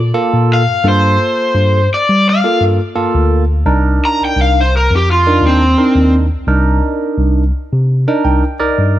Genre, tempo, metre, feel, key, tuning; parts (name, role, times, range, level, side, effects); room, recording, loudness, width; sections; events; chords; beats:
straight-eighth soul blues; 85 BPM; 4/4; swing 54% on 16ths; A4 = 440 Hz
mellow tine electric piano; bass; 0.0-9.0 s; C2 to G3; -13 LUFS; equal
barky tine electric piano; accompaniment; 0.1-9.0 s; Bb3 to G5; -16 LUFS; right 2 dB; phaser
cranked stack guitar; melody; 0.5-6.1 s; C4 to Bb5; -14 LUFS; left 1 dB; overdrive, slapback echo
light reverb; -10 LUFS; side -13 dB against mid
0.0-9.0 A section
tine electric piano fill 7.9-9.0
0.0 Gm7; 3.7 Cm7
0.15 | 0.85 1.55 2.26 2.96 | 3.67 4.37 5.08 5.78 | 6.48 7.19 7.89 8.60